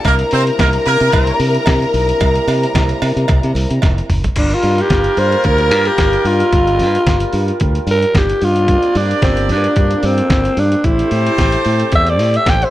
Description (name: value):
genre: disco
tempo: 111 BPM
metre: 4/4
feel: swing 56% on 16ths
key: G dorian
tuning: A4 = 443 Hz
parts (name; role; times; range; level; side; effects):
- warm studio violin section; second line; 0.0-4.1 s; Bb4 to Bb5; -18 LUFS; left 2 dB; analog delay
- mellow French horn section; sustained chords; 0.0-12.7 s; C3 to Bb4; -26 LUFS; right 1 dB; none
- clear horn section; stabs; 0.0-12.7 s; G3 to D5; -20 LUFS; right 1 dB; none
- trip hop sampler-style drum kit; drums; 0.0-12.7 s; crash cymbal, hi-hat, kick drum, snare drum, toms; -18 LUFS; equal; none
- modern bright fingered electric bass; bass; 0.1-12.6 s; F1 to C3; -17 LUFS; equal; none
- cowbell; percussion; 0.1-4.0 s; none; -26 LUFS; right 7 dB; none
- breathy alto saxophone; melody; 4.4-12.7 s; C4 to G5; -15 LUFS; equal; analog delay
room: light reverb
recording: none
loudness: -12 LUFS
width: side -14 dB against mid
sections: 0.0-4.4 A section; 4.4-12.7 B section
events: drum fill 3.8-4.4; alto saxophone solo 4.4-12.7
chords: 0.1 C9; 4.4 Gm7; 8.4 C7sus4/G; 10.8 Am7